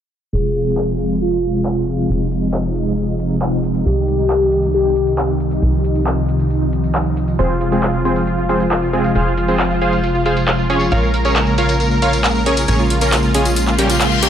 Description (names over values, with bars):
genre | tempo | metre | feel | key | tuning
uplifting trance | 136 BPM | 4/4 | straight | F minor | A4 = 439 Hz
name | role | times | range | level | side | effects
warm velvety synth lead | second line | 0.3-5.3 s | F4 to Ab4 | -21 LUFS | left 2 dB | chorus, tape echo
analog string pad | sustained chords | 0.3-14.3 s | C3 to F4 | -19 LUFS | equal | ensemble chorus
tight sequencer bass | bass | 0.3-14.3 s | F1 to C2 | -21 LUFS | equal | none
techno drum kit | drums | 0.3-14.3 s | handclaps, hi-hat | -23 LUFS | equal | studio reverb
tambourine | percussion | 0.3-14.2 s | none | -31 LUFS | left 5 dB | none
supersaw chords | melody | 7.4-14.3 s | G3 to F5 | -17 LUFS | right 1 dB | digital delay
reverse cymbal | sound effects | 13.7-14.3 s | none | -20 LUFS | left 8 dB | none
room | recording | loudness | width
light reverb, digital ambience | low-pass filter | -14 LUFS | side -9 dB against mid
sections
0.3-14.3 A section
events
filter sweep 0.3-14.3; reverse cymbal 13.7-14.3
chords
0.3 Fm; 3.9 Cm; 7.4 Fm; 10.9 Bbm7